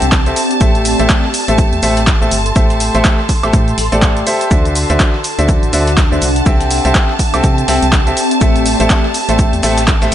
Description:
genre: piano house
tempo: 123 BPM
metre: 4/4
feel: swing 59% on 16ths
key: A dorian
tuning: A4 = 440 Hz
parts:
  - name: bright symphonic violin section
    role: sustained chords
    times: 0.0-10.1 s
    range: A5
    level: -22 LUFS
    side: right 1 dB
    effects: sidechain pumping
  - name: clear baby grand piano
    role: riff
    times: 0.0-10.1 s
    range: D3 to E5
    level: -17 LUFS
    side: equal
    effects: sidechain pumping, digital delay
  - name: organ-like FM bass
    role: bass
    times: 0.0-10.1 s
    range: G1 to C3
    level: -17 LUFS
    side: equal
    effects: sidechain pumping
  - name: punchy analog drum machine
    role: drums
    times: 0.0-10.1 s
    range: handclaps, hi-hat, shaker, woodblock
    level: -19 LUFS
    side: equal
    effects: overdrive
  - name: ethereal airy pad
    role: texture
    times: 0.0-10.1 s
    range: C4 to C6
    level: -20 LUFS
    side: left 1 dB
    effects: ensemble chorus, built-in reverb, sidechain pumping
  - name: dusty soul sampler-style drum kit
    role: drums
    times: 0.1-10.1 s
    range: hi-hat, shaker, snare drum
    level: -28 LUFS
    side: equal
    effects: none
  - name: electronic kick drum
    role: drums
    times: 0.1-10.0 s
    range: none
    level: -13 LUFS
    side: equal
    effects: overdrive
room: light reverb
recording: nothing above 10.3 kHz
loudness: -10 LUFS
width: side -11 dB against mid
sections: 0.0-10.1 A section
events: none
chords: 0.0 C6; 0.6 Am7; 4.5 D9; 6.5 C6; 8.4 Am7

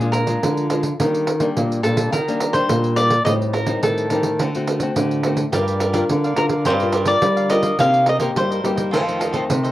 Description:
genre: samba and choro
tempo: 106 BPM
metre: 4/4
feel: straight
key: unclear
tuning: A4 = 439 Hz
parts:
  - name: cavaquinho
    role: melody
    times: 0.0-9.7 s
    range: Ab4 to F5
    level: -20 LUFS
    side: equal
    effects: cassette tape
  - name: nylon-string guitar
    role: accompaniment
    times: 0.0-9.7 s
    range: F2 to Bb4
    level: -24 LUFS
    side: left 2 dB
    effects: cassette tape
  - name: nylon-string guitar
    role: bass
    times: 0.0-9.7 s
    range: G2 to G3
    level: -21 LUFS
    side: equal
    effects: none
  - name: pandeiro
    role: percussion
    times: 0.0-9.7 s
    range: none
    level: -24 LUFS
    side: right 3 dB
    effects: none
  - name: cavaquinho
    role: accompaniment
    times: 5.5-9.7 s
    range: Eb4 to F5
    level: -26 LUFS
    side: right 2 dB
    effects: cassette tape
room: light reverb, studio ambience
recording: home recording on cassette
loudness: -16 LUFS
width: side -14 dB against mid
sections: 0.0-9.7 A section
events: none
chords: 0.0 Bb7; 1.0 Ebmaj7; 3.3 Am7b5; 4.4 D7; 5.5 Gm7; 7.8 Cm7; 8.9 F7

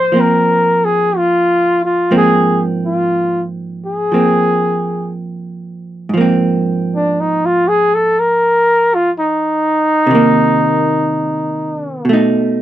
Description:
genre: jazz ballad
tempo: 60 BPM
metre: 4/4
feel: swing 67% on 8ths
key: Ab major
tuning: A4 = 440 Hz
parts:
  - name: warm flugelhorn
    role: melody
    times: 0.0-12.1 s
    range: D4 to C5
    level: -13 LUFS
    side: left 1 dB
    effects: none
  - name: vintage hollow-body jazz guitar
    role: accompaniment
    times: 0.0-12.6 s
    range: Ab2 to D#4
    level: -16 LUFS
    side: right 2 dB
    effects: none
room: light reverb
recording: dry, close 1970s-style studio recording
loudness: -12 LUFS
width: side -12 dB against mid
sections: 0.0-6.1 A section; 6.1-12.6 B section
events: flugelhorn solo 6.1-12.6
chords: 0.0 Ab69; 10.1 Cm7; 12.1 B7

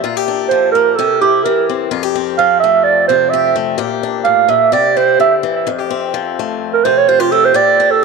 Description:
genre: highlife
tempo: 128 BPM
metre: 4/4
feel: straight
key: F major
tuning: A4 = 440 Hz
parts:
  - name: picked swing-style acoustic guitar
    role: accompaniment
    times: 0.0-8.0 s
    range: F2 to G4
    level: -18 LUFS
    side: left 13 dB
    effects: none
  - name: dark clarinet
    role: melody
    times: 0.5-8.0 s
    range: F4 to F5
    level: -12 LUFS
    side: right 7 dB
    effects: tape echo
room: moderate plate reverb, RT60 3.6 s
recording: 1960s-style stereo with parts hard left and right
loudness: -11 LUFS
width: side -4 dB against mid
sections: 0.0-8.0 A section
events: clarinet solo 0.0-8.0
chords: 0.0 Bb6; 1.0 C; 1.9 Fadd9; 3.8 Bb6; 4.7 C; 5.7 Fadd9

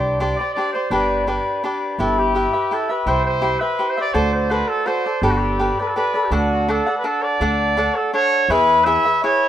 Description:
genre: mexican folk, mariachi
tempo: 166 BPM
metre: 3/4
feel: straight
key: G major, D major from 6.3 s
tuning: A4 = 435 Hz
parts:
  - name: cavaquinho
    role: accompaniment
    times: 0.0-9.5 s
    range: D4 to F#5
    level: -20 LUFS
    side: left 2 dB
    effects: plate reverb
  - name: upright bass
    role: bass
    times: 0.0-9.0 s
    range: G1 to E2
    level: -23 LUFS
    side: right 1 dB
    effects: none
  - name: clear trumpet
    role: melody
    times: 0.4-9.5 s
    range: F#4 to E5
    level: -20 LUFS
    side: right 2 dB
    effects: plate reverb, tape echo
room: moderate studio reverb, RT60 0.6 s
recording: rough home demo mix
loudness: -16 LUFS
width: side -11 dB against mid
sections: 0.0-6.3 A section; 6.3-9.5 B section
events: none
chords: 0.0 Csus2; 0.9 G; 2.0 Em/G; 3.1 C; 4.1 D7; 5.2 Gadd9; 6.3 D; 8.5 E

